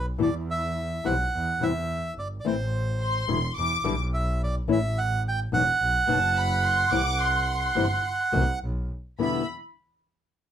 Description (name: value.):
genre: tango.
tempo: 107 BPM.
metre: 4/4.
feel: rubato.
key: E minor.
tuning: A4 = 440 Hz.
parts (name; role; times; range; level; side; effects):
bandoneon; melody; 0.0-9.5 s; C5 to G5; -26 LUFS; right 3 dB; none.
rich double bass; bass; 0.0-9.4 s; E1 to E2; -28 LUFS; right 1 dB; none.
flamenco guitar; accompaniment; 0.2-9.4 s; E2 to F#4; -26 LUFS; left 5 dB; none.
warm studio violin section; second line; 3.0-9.5 s; A5 to D6; -30 LUFS; left 3 dB; none.
room: light reverb.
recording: minimal, uncompressed stereo recording.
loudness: -23 LUFS.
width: side -9 dB against mid.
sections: 0.0-9.2 A section; 9.2-10.5 B section.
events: none.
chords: 0.2 Em; 1.3 C/E; 2.5 Am; 3.6 E7(no3); 4.7 A5; 5.8 B5; 6.9 C; 8.6 N.C.; 9.2 Em7.